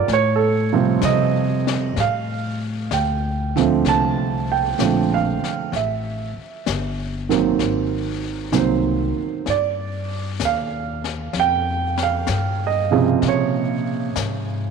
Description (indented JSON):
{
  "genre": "jazz ballad",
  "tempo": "64 BPM",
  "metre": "4/4",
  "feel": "swing 69% on 8ths",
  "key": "unclear",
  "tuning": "A4 = 438 Hz",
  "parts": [
    { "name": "dark grand piano", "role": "accompaniment", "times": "0.0-14.7 s", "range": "B#2 to A5", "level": "-20 LUFS", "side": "right 9 dB", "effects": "none" },
    { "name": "upright bass", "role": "bass", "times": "0.0-14.7 s", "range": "G1 to B#2", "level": "-24 LUFS", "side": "left 3 dB", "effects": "none" },
    { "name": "jazz brush drum kit", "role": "drums", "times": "0.1-14.7 s", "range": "brushed snare drum, hi-hat, kick drum, snare drum", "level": "-30 LUFS", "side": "left 12 dB", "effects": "none" }
  ],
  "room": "light reverb, studio reverb",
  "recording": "1960s-style stereo with parts hard left and right",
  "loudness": "-18 LUFS",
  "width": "side -5 dB against mid",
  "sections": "0.0-2.0 A section; 2.0-14.7 B section",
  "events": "none",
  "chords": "0.1 A7alt; 2.0 Dm7; 5.7 Am7; 7.6 Ab9; 9.5 G5; 13.2 Bbm7",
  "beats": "0.08 1.03 | 1.97 2.91 3.85 4.79 | 5.73 6.66 7.60 8.54 | 9.47 10.41 11.35 12.29 | 13.22 14.16"
}